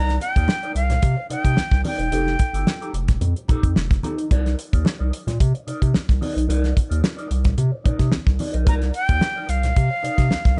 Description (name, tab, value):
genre	funk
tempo	110 BPM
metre	4/4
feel	straight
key	C dorian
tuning	A4 = 439 Hz
part	breathy concert flute	melody	0.0-2.9, 8.7-10.6 s	F5 to Bb5	-27 LUFS	equal	none
part	mellow electric guitar	accompaniment	0.0-10.6 s	Eb4 to Eb5	-32 LUFS	equal	wah, spring reverb
part	round analog bass	bass	0.0-10.6 s	E1 to C3	-23 LUFS	equal	none
part	damped 70s drum kit	drums	0.1-10.6 s	hi-hat, kick drum, snare drum	-22 LUFS	equal	none
part	congas	percussion	0.2-10.6 s	none	-34 LUFS	equal	none
room	little or no reverb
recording	nothing above 10.9 kHz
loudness	-21 LUFS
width	mono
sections	0.0-10.6 A section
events	none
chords	0.0 Cm9; 2.1 F9; 4.3 Cm9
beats	0.49 1.03 1.58 | 2.12 2.67 3.22 3.76 | 4.31 4.86 5.40 5.95 | 6.49 7.04 7.58 8.13 | 8.68 9.22 9.77 10.31